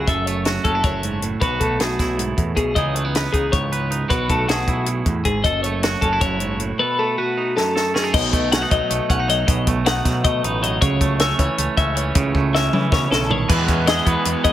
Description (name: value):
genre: math rock and midwest emo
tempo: 313 BPM (eighths)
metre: 7/8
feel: straight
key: unclear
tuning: A4 = 440 Hz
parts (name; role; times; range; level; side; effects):
- twangy electric guitar; accompaniment; 0.0-14.5 s; F#2 to B4; -23 LUFS; right 5 dB; none
- twelve-string electric guitar; arpeggios; 0.0-14.5 s; F#4 to F#5; -22 LUFS; left 4 dB; spring reverb
- growling picked electric bass; bass; 0.0-14.5 s; F#1 to C#3; -24 LUFS; equal; overdrive
- compact cocktail drum kit; drums; 0.1-14.5 s; crash cymbal, hi-hat, kick drum, snare drum, toms; -21 LUFS; equal; none
- raw garage guitar; riff; 13.5-14.5 s; E3 to E4; -22 LUFS; right 1 dB; overdrive
room: light reverb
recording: none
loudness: -17 LUFS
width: side -12 dB against mid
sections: 0.0-8.1 A section; 8.1-14.5 B section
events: drum fill 7.6-8.1, 12.4-13.5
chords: 0.1 F#m7; 1.4 B7sus4; 2.8 C#m9; 4.1 B7sus4; 5.5 F#m7; 6.8 B7; 10.8 A/C#; 13.5 Emaj7